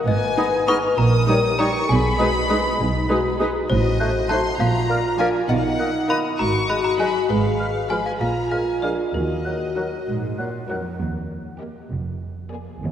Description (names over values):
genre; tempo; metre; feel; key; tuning
cinematic, playful, whimsical film cue; 66 BPM (dotted quarters); 6/8; straight; Eb minor; A4 = 442 Hz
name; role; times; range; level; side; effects
mellow French horn section; sustained chords; 0.0-10.5 s; D#4 to Cb5; -24 LUFS; left 2 dB; none
trough xylophone with wooden mallets; melody; 0.1-10.0 s; Bb4 to Db6; -28 LUFS; left 2 dB; none
warm chamber violin section; melody; 0.1-12.7 s; D5 to F6; -27 LUFS; left 2 dB; none
dark chamber double bass section; bass; 0.1-12.9 s; F1 to Eb2; -25 LUFS; right 2 dB; none
warm chamber cello section; bass; 0.1-12.9 s; Eb2 to Eb3; -28 LUFS; right 2 dB; none
hollow concert flute; second line; 0.4-10.8 s; Eb6 to Gb6; -32 LUFS; equal; none
warm chamber violin section; second line; 0.4-12.7 s; Eb4 to D#5; -33 LUFS; left 2 dB; none
warm clarinet; second line; 0.4-10.8 s; Bb4 to Eb5; -33 LUFS; left 1 dB; none
mellow bassoon; accompaniment; 0.4-10.8 s; Gb3 to Cb4; -30 LUFS; right 1 dB; none
warm studio viola section; accompaniment; 0.4-12.7 s; D#3 to F4; -30 LUFS; right 1 dB; none
room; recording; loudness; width
wet church reverb, RT60 3.2 s; none; -18 LUFS; side -9 dB against mid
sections
0.0-11.0 A section; 11.0-12.9 B section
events
none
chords
0.1 Abm; 1.0 Eb7/Bb; 1.9 Abm/Cb; 3.7 Adim7; 4.6 Bb; 5.5 Bmaj7; 6.4 Ab5; 7.3 Fdim/Ab; 8.2 Bb7; 9.1 Ebm; 11.0 Eb; 11.9 Bb7/F